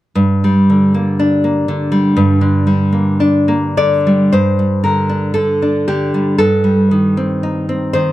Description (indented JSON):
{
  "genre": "romantic piece for solo classical guitar",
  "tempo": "51-62 BPM",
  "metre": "2/4",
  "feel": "rubato",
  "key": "G minor",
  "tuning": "A4 = 440 Hz",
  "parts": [
    { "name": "nylon-string guitar", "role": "solo", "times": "0.2-8.1 s", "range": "G2 to D5", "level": "-11 LUFS", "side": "equal", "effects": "none" }
  ],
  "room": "light reverb",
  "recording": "dark, warm production",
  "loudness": "-11 LUFS",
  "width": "side -15 dB against mid",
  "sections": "0.1-4.3 A section; 4.3-8.1 B section",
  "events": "none",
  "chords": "0.1 Gm; 4.3 G5; 6.4 Adim/G"
}